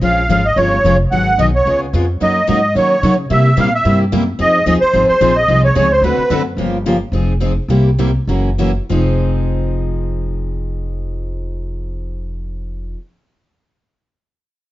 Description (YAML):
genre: acoustic string swing (jazz manouche)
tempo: 187-220 BPM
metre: 4/4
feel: swing 57% on 8ths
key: F minor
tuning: A4 = 440 Hz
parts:
  - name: musette accordion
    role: melody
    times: 0.0-6.4 s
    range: B4 to Gb5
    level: -14 LUFS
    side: right 1 dB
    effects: none
  - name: picked steel-string acoustic guitar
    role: accompaniment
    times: 0.0-13.0 s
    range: C3 to Bb4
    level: -20 LUFS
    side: left 4 dB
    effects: none
  - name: upright bass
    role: bass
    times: 0.0-12.9 s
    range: F1 to Eb3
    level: -18 LUFS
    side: equal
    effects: none
  - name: picked steel-string acoustic guitar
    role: accompaniment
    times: 2.2-13.0 s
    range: C3 to Bb4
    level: -23 LUFS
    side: right 5 dB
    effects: none
room: moderate studio reverb, RT60 0.5 s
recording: nothing above 7.6 kHz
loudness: -12 LUFS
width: side -15 dB against mid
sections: 0.0-6.6 A section; 6.6-8.9 B section; 8.9-11.5 C section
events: slowing down 6.6-8.9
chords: 0.0 Bbm7; 1.1 Abm7; 1.7 Db7; 2.2 Gb69; 3.3 C7; 4.4 Fm7; 6.0 D7; 6.6 Gm7b5; 7.1 Fm7; 7.7 C7; 8.3 Gb7; 8.9 Fm7